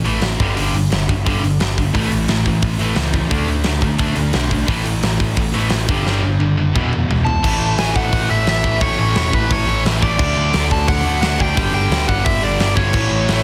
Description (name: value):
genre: punk rock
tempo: 175 BPM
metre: 4/4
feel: straight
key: A major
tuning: A4 = 440 Hz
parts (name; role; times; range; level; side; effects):
- distorted electric guitar; riff; 0.0-13.4 s; G2 to E4; -27 LUFS; equal; distortion
- tight distorted guitar; riff; 0.0-13.4 s; E2 to D4; -26 LUFS; equal; distortion
- overdriven picked electric bass; bass; 0.0-13.4 s; E1 to D2; -23 LUFS; equal; none
- big rock drum kit; drums; 0.1-13.4 s; crash cymbal, hi-hat, kick drum, snare drum, toms; -22 LUFS; equal; none
- thick fuzz guitar; riff; 1.9-13.4 s; E2 to D4; -27 LUFS; equal; distortion
- biting overdriven guitar; melody; 7.2-13.4 s; B4 to A5; -23 LUFS; equal; digital delay
room: little or no reverb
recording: dense, heavily limited modern master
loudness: -17 LUFS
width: mono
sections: 0.0-7.4 A section; 7.4-13.4 B section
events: drum fill 6.1-7.4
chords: 0.4 G5; 1.9 A; 3.3 D5; 4.7 A5; 5.9 G5; 6.8 E; 7.4 A; 10.2 D; 11.6 G